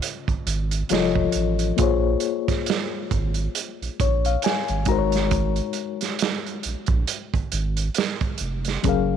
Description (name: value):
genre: R&B, neo-soul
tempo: 68 BPM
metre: 4/4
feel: swing 57% on 16ths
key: unclear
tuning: A4 = 441 Hz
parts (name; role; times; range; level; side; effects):
- reed electric piano; accompaniment; 0.0-9.2 s; Db3 to Bb5; -25 LUFS; left 11 dB; medium tremolo
- crunchy breakbeat drum kit; drums; 0.0-9.1 s; hi-hat, kick drum, snare drum; -25 LUFS; right 6 dB; none
- round analog bass; bass; 0.3-9.2 s; F1 to Bb1; -24 LUFS; right 1 dB; none
room: light reverb, small room ambience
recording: 1960s-style stereo with parts hard left and right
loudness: -21 LUFS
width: side -8 dB against mid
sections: 0.0-9.2 A section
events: reed electric piano fill 3.5-5.3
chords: 0.0 Dbmaj9; 0.9 F7b13; 1.8 Bbm9; 4.9 Ab7sus4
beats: 0.02 0.90 | 1.78 2.67 3.55 4.43 | 5.31 6.20 7.08 7.96 | 8.84